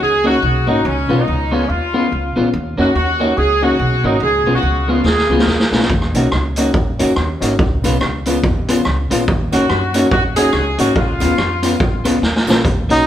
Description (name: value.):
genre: ska.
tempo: 142 BPM.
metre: 4/4.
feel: swing 60% on 8ths.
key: unclear.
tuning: A4 = 440 Hz.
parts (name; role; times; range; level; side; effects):
warm horn section; melody; 0.0-5.7, 9.5-12.2 s; Db4 to Ab4; -18 LUFS; equal; tape echo.
upright bass; bass; 0.0-13.0 s; Ab1 to Gb2; -20 LUFS; equal; none.
clean electric guitar; accompaniment; 0.2-13.0 s; Ab3 to Gb4; -20 LUFS; right 1 dB; none.
dark upright piano; stabs; 0.2-13.0 s; Cb4 to Gb4; -21 LUFS; left 4 dB; none.
street-band drum kit; drums; 5.1-13.0 s; hi-hat, kick drum, rim click, snare drum; -18 LUFS; equal; none.
tambourine; percussion; 6.1-12.6 s; none; -34 LUFS; right 6 dB; none.
breathy trumpet; melody; 12.9-13.1 s; Eb4; -12 LUFS; right 1 dB; none.
room: moderate large studio reverb, RT60 1.2 s.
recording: band playing live in one room.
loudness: -13 LUFS.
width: side -11 dB against mid.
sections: 0.0-12.7 A section.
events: drum fill 5.1-5.9, 12.2-12.7.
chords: 0.0 Ebm7; 0.8 Db7; 2.5 Ebm7; 4.2 Db7; 5.9 Ebm7; 7.6 Db7; 9.3 Ebm7; 11.0 Db7.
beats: 0.00 0.43 | 0.85 1.27 1.69 2.11 | 2.53 2.96 3.38 3.80 | 4.22 4.64 5.06 5.48 | 5.91 6.33 6.75 7.17 | 7.59 8.01 8.43 8.86 | 9.28 9.70 10.12 10.54 | 10.96 11.38 11.81 12.23 | 12.65.